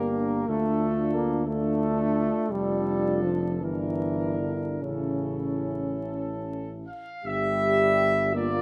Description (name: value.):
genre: classical, hymn-like piece for brass band.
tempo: 48-60 BPM (dotted quarters).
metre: 6/8.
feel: rubato.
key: D minor.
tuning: A4 = 442 Hz.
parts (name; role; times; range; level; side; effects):
dark trumpet section; melody; 0.0-8.6 s; A4 to F5; -33 LUFS; equal; none.
mellow French horn section; second line; 0.0-8.6 s; E4 to G4; -35 LUFS; equal; none.
dark trombone section; accompaniment; 0.0-8.6 s; G3 to D4; -36 LUFS; equal; none.
mellow trombone; accompaniment; 0.0-8.6 s; C#3 to Bb3; -31 LUFS; equal; none.
mellow tuba; bass; 0.0-8.6 s; F1 to D2; -34 LUFS; equal; none.
room: light reverb.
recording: close, detailed microphones, vinyl crackle.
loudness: -27 LUFS.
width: mono.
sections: 0.0-7.2 A section; 7.2-8.6 B section.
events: none.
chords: 0.5 Dm; 2.5 Dm/F; 3.6 Em7b5/G; 4.8 A; 7.2 Gm7.